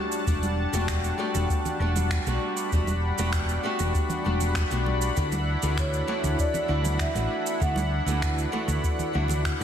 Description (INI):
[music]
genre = sunset chillout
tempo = 98 BPM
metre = 4/4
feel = straight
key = E minor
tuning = A4 = 440 Hz
[part]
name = flamenco guitar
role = accompaniment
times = 0.0-9.6 s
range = E3 to F#4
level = -31 LUFS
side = moving between left 5 dB and right 4 dB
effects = auto-pan, ping-pong delay, shimmer reverb, slapback echo
[part]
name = lush unison pad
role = sustained chords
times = 0.0-9.6 s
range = G3 to B5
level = -31 LUFS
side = left 1 dB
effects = chorus, shimmer reverb
[part]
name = electronic cabasa and finger snaps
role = drums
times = 0.1-9.6 s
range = none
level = -35 LUFS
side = right 3 dB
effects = studio reverb
[part]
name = hollow-body short-scale fingered electric bass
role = bass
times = 0.3-9.6 s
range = E1 to D2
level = -27 LUFS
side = equal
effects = none
[part]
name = electronic kick drum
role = drums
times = 0.3-9.6 s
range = none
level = -28 LUFS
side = equal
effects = overdrive, studio reverb
[part]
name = congas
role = percussion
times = 0.4-9.4 s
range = none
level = -36 LUFS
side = right 2 dB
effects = slapback echo
[part]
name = vibraphone with medium mallets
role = melody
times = 5.8-8.5 s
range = C#5 to F#5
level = -32 LUFS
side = right 1 dB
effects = digital delay, shimmer reverb, slapback echo
[sound]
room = moderate lush hall reverb, RT60 2.0 s, studio reverb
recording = big arena sound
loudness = -23 LUFS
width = side -9 dB against mid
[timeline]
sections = 0.0-9.6 A section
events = none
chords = 0.0 Em11; 5.2 D69